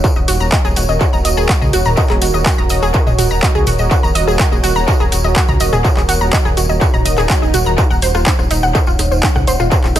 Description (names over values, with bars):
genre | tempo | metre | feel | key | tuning
melodic techno | 124 BPM | 4/4 | straight | unclear | A4 = 440 Hz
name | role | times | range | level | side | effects
dark analog pad | sustained chords | 0.0-10.0 s | Eb4 to Gb5 | -22 LUFS | right 2 dB | chorus, sidechain pumping
analog pluck | arpeggios | 0.0-10.0 s | Eb4 to Bb5 | -18 LUFS | equal | chorus, sidechain pumping, tape echo
electronic kick drum | drums | 0.0-9.8 s | none | -15 LUFS | equal | distortion, overdrive
tambourine | percussion | 0.0-10.0 s | none | -26 LUFS | left 3 dB | none
dark detuned saw bass | bass | 0.2-10.0 s | Eb1 to Db2 | -18 LUFS | equal | sidechain pumping
techno drum kit | drums | 0.3-10.0 s | handclaps, hi-hat, rim click, toms | -20 LUFS | equal | overdrive, analog delay
swell | sound effects | 7.0-7.8 s | none | -24 LUFS | right 2 dB | none
room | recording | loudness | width
light reverb, digital ambience | echo-heavy mix | -11 LUFS | side -11 dB against mid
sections
0.0-10.0 A section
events
swell 7.0-7.8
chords
0.0 Gb/Eb; 7.8 Ebm7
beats
| 0.04 0.52 1.01 1.49 | 1.98 2.46 2.94 3.43 | 3.91 4.39 4.88 5.36 | 5.85 6.33 6.81 7.30 | 7.78 8.27 8.75 9.23 | 9.72